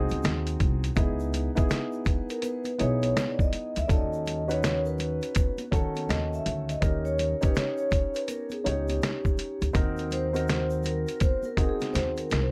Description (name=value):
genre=hip hop, jazz-hop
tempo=82 BPM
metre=4/4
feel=swing 63% on 16ths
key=C# dorian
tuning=A4 = 440 Hz
part: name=vibraphone with soft mallets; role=melody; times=0.0-12.5 s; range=G4 to E5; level=-34 LUFS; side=equal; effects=plate reverb
part: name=dark concert grand piano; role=accompaniment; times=0.0-12.5 s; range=D#3 to C#5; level=-34 LUFS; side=equal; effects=plate reverb
part: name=upright bass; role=bass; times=0.0-12.5 s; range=B1 to D#2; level=-32 LUFS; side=equal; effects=none
part: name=lo-fi sampler-style drum kit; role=drums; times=0.1-12.5 s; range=hi-hat, kick drum, snare drum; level=-29 LUFS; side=equal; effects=none
part: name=congas and egg shaker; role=percussion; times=0.1-12.5 s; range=none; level=-46 LUFS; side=equal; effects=none
room=light reverb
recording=none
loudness=-27 LUFS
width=mono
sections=1.0-12.5 A section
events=vibraphone solo 1.0-12.5; drum fill 11.9-12.5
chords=0.0 G#7; 1.0 C#m9; 3.9 B7/D#; 6.8 D#7; 9.7 G#7/D#